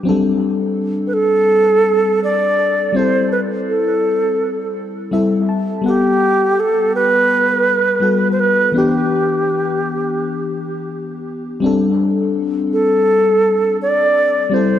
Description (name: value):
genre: reggae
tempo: 83 BPM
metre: 4/4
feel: straight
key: unclear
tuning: A4 = 439 Hz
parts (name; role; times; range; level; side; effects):
- FM electric piano with soft pad layer; accompaniment; 0.0-14.8 s; E3 to A5; -18 LUFS; left 3 dB; chorus, dub echo
- alto flute; melody; 1.1-14.8 s; G4 to D5; -14 LUFS; right 1 dB; tape echo
room: moderate plate reverb, RT60 2.5 s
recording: dark, warm production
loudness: -13 LUFS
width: side -10 dB against mid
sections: 0.0-14.8 A section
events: FM electric piano fill 4.8-5.8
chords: 0.1 D7sus4; 3.0 Am7; 5.8 Gmaj9; 8.7 Em7; 11.6 D7sus4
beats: | 0.06 0.78 1.50 2.23 | 2.95 3.67 4.40 5.12 | 5.85 6.57 7.29 8.02 | 8.74 9.47 10.19 10.91 | 11.64 12.36 13.09 13.81 | 14.54